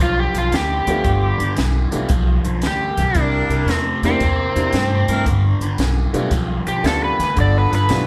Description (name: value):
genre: electric blues shuffle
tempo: 114 BPM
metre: 4/4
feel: swing 67% on 8ths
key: G mixolydian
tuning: A4 = 440 Hz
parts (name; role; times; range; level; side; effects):
- overdriven slide guitar; melody; 0.0-8.1 s; C4 to D5; -23 LUFS; equal; none
- overdriven semi-hollow guitar; riff; 0.0-8.1 s; G2 to Bb3; -27 LUFS; equal; phaser
- upright bass; bass; 0.0-8.1 s; G1 to G2; -22 LUFS; equal; none
- compact cocktail drum kit; drums; 0.3-8.1 s; hi-hat, kick drum, snare drum; -26 LUFS; equal; none
- bright upright piano; accompaniment; 0.9-8.1 s; A3 to G4; -26 LUFS; equal; none
- bright horn section; stabs; 3.2-8.0 s; B3 to Bb4; -30 LUFS; equal; none
room: moderate large studio reverb, RT60 1.1 s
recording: band playing live in one room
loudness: -18 LUFS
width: mono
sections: 0.0-8.1 A section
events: electric slide guitar solo 0.0-8.1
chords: 0.0 G9; 3.2 C9; 5.3 G9